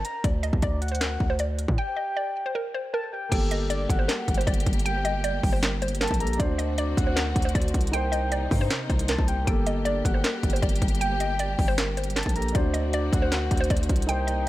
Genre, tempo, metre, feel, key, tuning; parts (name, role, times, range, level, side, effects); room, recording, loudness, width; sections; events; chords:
hip hop, trap; 156 BPM; 4/4; half-time; G harmonic minor; A4 = 441 Hz
hollow square pluck; melody; 0.0-14.5 s; Bb4 to G5; -31 LUFS; right 1 dB; chorus, digital delay
soft octave-layered synth lead; second line; 0.0-14.5 s; D5 to Bb5; -33 LUFS; left 2 dB; chorus, digital delay
hard-hitting 808-style bass; bass; 0.0-14.5 s; G1 to A2; -27 LUFS; equal
trap drum kit; drums; 0.0-14.4 s; crash cymbal, handclaps, hi-hat, kick drum, snare drum; -26 LUFS; equal
dark grand piano; accompaniment; 3.3-14.5 s; Bb3 to C5; -34 LUFS; equal
warm symphonic string section; sustained chords; 3.3-14.5 s; C3 to G4; -35 LUFS; left 2 dB
little or no reverb; -23 LUFS; side -16 dB against mid
0.0-3.3 A section; 3.3-14.5 B section
break 0.0-3.3
0.2 D; 1.8 N.C.; 3.3 Gmadd9; 6.4 D7; 7.9 Cm7; 9.5 Gmadd9; 12.5 D7